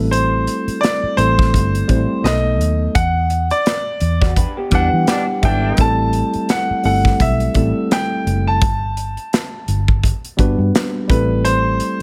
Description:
lush 1970s-style soul; 85 BPM; 4/4; swing 58% on 16ths; A dorian; A4 = 440 Hz
mellow tine electric piano; accompaniment; 0.0-12.0 s; F#3 to C5; -23 LUFS; equal
vintage muted fingered electric bass; bass; 0.0-11.8 s; F#1 to E3; -21 LUFS; equal
clear grand piano; melody; 0.1-12.0 s; B4 to A5; -22 LUFS; equal
modern studio drum kit; drums; 0.1-12.0 s; hi-hat, kick drum, snare drum; -20 LUFS; equal
electric guitar through a small old amp; riff; 4.2-5.6 s; B3 to D5; -28 LUFS; equal; analog chorus
clear horn section; stabs; 4.7-5.9 s; B2 to D4; -28 LUFS; equal
small room ambience; -17 LUFS; mono
0.0-12.0 A section
band accent 3.0-5.8
0.0 Am7; 2.2 B7; 3.0 Em7; 5.8 Am7; 8.6 Gmaj7; 11.1 Am7

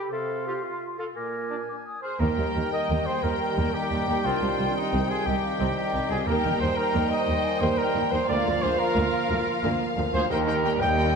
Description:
cinematic, heroic adventure film score; 118 BPM (dotted quarters); 12/8; straight; Eb major; A4 = 440 Hz
mellow hollow silver concert flute; second line; 0.0-11.2 s; Eb5 to F6; -37 LUFS; left 2 dB
warm clarinet; second line; 0.0-1.7 s; F4 to Bb4; -32 LUFS; equal
clear trumpet; stabs; 0.0-11.2 s; D4 to G5; -29 LUFS; right 2 dB
clear oboe; second line; 0.1-11.2 s; Eb4 to Ab5; -36 LUFS; left 1 dB
clear trombone section; sustained chords; 0.1-11.2 s; Bb2 to G3; -34 LUFS; right 3 dB
warm symphonic violin section; second line; 2.0-11.2 s; C4 to Eb5; -35 LUFS; left 6 dB
clear symphonic violin section; melody; 2.2-11.1 s; F5 to G5; -32 LUFS; left 6 dB
rich symphonic viola section; accompaniment; 2.2-11.0 s; Eb3 to F4; -32 LUFS; right 1 dB
mellow French horn section; sustained chords; 2.2-11.2 s; Bb3 to Bb4; -34 LUFS; left 2 dB
rich symphonic cello section; bass; 2.2-11.2 s; C2 to Eb2; -30 LUFS; right 2 dB
rich symphonic double bass section; bass; 2.2-11.2 s; C2 to Eb2; -31 LUFS; right 2 dB
wet scoring stage reverb, RT60 1.7 s; -23 LUFS; side -5 dB against mid
0.0-2.2 A section; 2.2-11.2 B section
0.1 F/C; 1.2 Bb7; 2.2 Eb; 4.3 Cm; 6.3 Eb; 8.3 Bb/D; 10.3 Eb

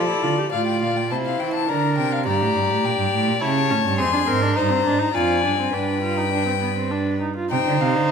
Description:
classical, baroque-style fugue for string quartet; 103 BPM; 3/4; straight; C minor from 4.0 s; A4 = 437 Hz
warm violin; melody; 0.0-8.1 s; D5 to C6; -24 LUFS; left 11 dB
rich violin; second line; 0.0-8.1 s; Ab4 to D5; -26 LUFS; left 4 dB
warm viola; accompaniment; 0.0-8.1 s; B3 to G4; -24 LUFS; right 3 dB
rich cello; bass; 0.2-8.1 s; F2 to E3; -24 LUFS; right 5 dB
wet recital hall reverb, RT60 1.8 s; -18 LUFS; side -6 dB against mid
0.5-7.5 A section
0.0 Dm; 0.5 F/A; 1.7 Bb/D; 2.3 Gmadd9; 3.4 A/C#; 4.0 Fm; 5.1 Ddim/F; 5.7 G; 7.5 Cm

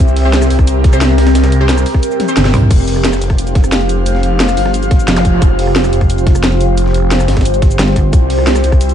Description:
dark technical drum and bass; 177 BPM; 4/4; straight; A4 = 444 Hz
deep dark ambient pad; sustained chords; 0.0-8.9 s; C4 to C5; -18 LUFS; equal; chorus, built-in reverb, sidechain pumping
phased detuned saw bass; bass; 0.0-8.9 s; F1 to C2; -13 LUFS; equal; phaser, overdrive, sidechain pumping
breakbeat sampler-style drum kit; drums; 0.0-8.9 s; hi-hat, snare drum; -25 LUFS; equal
drum and bass drum kit; drums; 0.0-8.9 s; cabasa, crash cymbal, hi-hat, rim click, snare drum, toms; -17 LUFS; equal; small room ambience
electronic kick drum; drums; 0.0-8.8 s; -10 LUFS; equal; small room ambience
airy breathy pad; texture; 0.0-8.9 s; C4 to F5; -20 LUFS; left 1 dB; chorus, phaser, sidechain pumping
orchestra-hit-like synth stab; stabs; 0.2-2.3 s; C4 to C5; -23 LUFS; right 2 dB; built-in reverb, phaser, cassette tape, tape echo
pulsing pluck wobble bass; bass; 2.5-2.7, 5.1-5.4, 7.8-8.1 s; F1 to C2; -13 LUFS; equal; chorus
zap; sound effects; 5.2 s; -24 LUFS; equal
light reverb, digital ambience; dark, warm production, nothing above 10.5 kHz; -9 LUFS; side -9 dB against mid
0.0-2.7 A section; 2.7-8.9 A section
drop 0.0-2.7, 2.7-8.9; kick drops out 2.0-2.7; drum fill 2.2-2.7; band accent 2.4
0.0 C; 2.7 Fsus2; 8.1 C

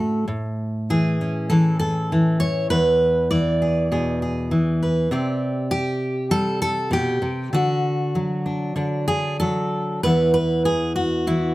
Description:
folk, solo fingerstyle acoustic guitar; 98 BPM; 4/4; rubato; E mixolydian; A4 = 436 Hz
fingerpicked steel-string acoustic guitar; solo; 0.0-11.5 s; E2 to D5; -19 LUFS; equal
light reverb; close, detailed microphones; -19 LUFS; side -17 dB against mid
0.0-10.0 A section; 10.0-11.5 B section
0.3 A; 2.7 E; 5.1 Csus2; 7.5 D; 10.0 E5

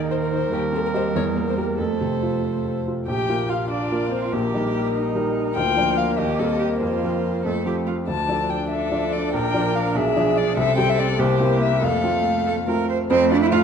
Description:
quick classical-period movement for piano quartet; 96 BPM (dotted quarters); 6/8; straight; Bb major, F major from 8.1 s; A4 = 440 Hz
rich cello; second line; 0.0-13.6 s; Eb3 to C5; -25 LUFS; right 5 dB
clear baby grand piano; accompaniment; 0.0-13.6 s; Bb1 to Eb5; -24 LUFS; equal
rich viola; accompaniment; 0.0-13.6 s; A3 to Bb4; -27 LUFS; right 2 dB
dark violin; melody; 0.1-13.6 s; G4 to A5; -25 LUFS; left 7 dB
wet recital hall reverb, RT60 1.5 s; dark, warm production; -19 LUFS; side -7 dB against mid
0.0-3.1 A section; 3.1-13.1 B section
0.0 Ab/Eb (rootless); 0.5 Cm/Eb; 1.1 Edim; 1.8 F; 3.1 Bb; 4.3 Eb/Bb; 5.6 Bb/D; 6.2 Cm7/Eb; 6.8 Fsus4; 7.4 F; 8.1 Dm; 9.3 Bb; 10.0 Bdim7; 10.6 C5; 11.2 C7; 11.8 F

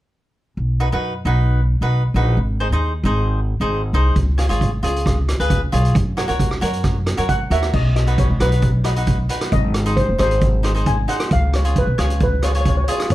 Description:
calypso; 134 BPM; 4/4; straight; B major; A4 = 440 Hz
upright bass; bass; 0.6-13.1 s; F#1 to F#2; -18 LUFS; equal
cavaquinho; accompaniment; 0.8-13.1 s; D#4 to C#5; -24 LUFS; equal
street-band drum kit; drums; 4.2-13.1 s; crash cymbal, hi-hat, kick drum, rim click; -21 LUFS; right 1 dB
steel pan; melody; 7.3-13.1 s; B4 to G#5; -23 LUFS; left 1 dB; plate reverb
light reverb; dark, warm production; -16 LUFS; side -15 dB against mid
0.6-7.7 A section; 7.7-13.1 B section
0.6 B; 2.4 G#; 4.2 C#7; 5.9 F#; 7.7 B; 9.5 G#; 11.3 C#7

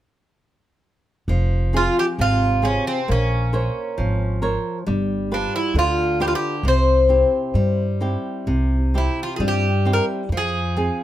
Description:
fado-style ballad; 67 BPM; 2/4; rubato; F harmonic minor; A4 = 440 Hz
flamenco guitar; accompaniment; 1.3-11.0 s; C3 to Db5; -24 LUFS; equal
upright bass; bass; 1.3-10.9 s; F1 to G2; -21 LUFS; equal
Greek bouzouki; melody; 1.8-11.0 s; C4 to C5; -21 LUFS; left 1 dB
little or no reverb; -18 LUFS; side -13 dB against mid
1.3-11.0 A section
1.3 Fm; 3.1 Bbmadd9; 4.9 G7; 6.6 C; 10.3 Fm

